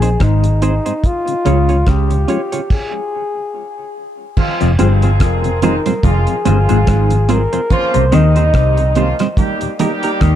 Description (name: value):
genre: roots reggae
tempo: 72 BPM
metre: 4/4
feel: swing 57% on 16ths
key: unclear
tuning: A4 = 439 Hz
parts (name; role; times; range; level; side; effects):
- breathy flugelhorn; melody; 0.0-9.4 s; Eb4 to Eb5; -20 LUFS; left 1 dB; tape echo
- semi-hollow electric guitar; accompaniment; 0.0-10.1 s; Bb3 to Db5; -22 LUFS; right 4 dB; tape echo
- mellow clav; riff; 0.0-10.4 s; F2 to Eb3; -19 LUFS; left 5 dB; phaser
- vintage muted fingered electric bass; bass; 0.0-10.4 s; F1 to Eb2; -13 LUFS; equal; none
- cloth-damped thuddy drum kit; drums; 0.0-10.4 s; crash cymbal, hi-hat, kick drum, rim click; -17 LUFS; equal; none
- mellow tonewheel organ; accompaniment; 0.5-9.9 s; Eb2 to Eb4; -25 LUFS; left 3 dB; chorus vibrato, slow rotary speaker, tape echo
- mellow horn section; second line; 4.4-10.4 s; Eb3 to Ab4; -21 LUFS; equal; tape echo
- congas; percussion; 4.4-10.4 s; none; -21 LUFS; right 11 dB; none
room: light reverb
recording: dark, warm production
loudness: -12 LUFS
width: side -11 dB against mid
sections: 0.0-4.4 A section; 4.4-10.4 B section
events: stop 2.7-4.4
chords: 0.0 Ab; 1.0 Db; 4.4 Fm; 7.7 Cm; 9.4 Eb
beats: 0.20 | 1.03 1.87 2.70 3.54 | 4.37 5.21 6.04 6.88 | 7.71 8.54 9.38 10.21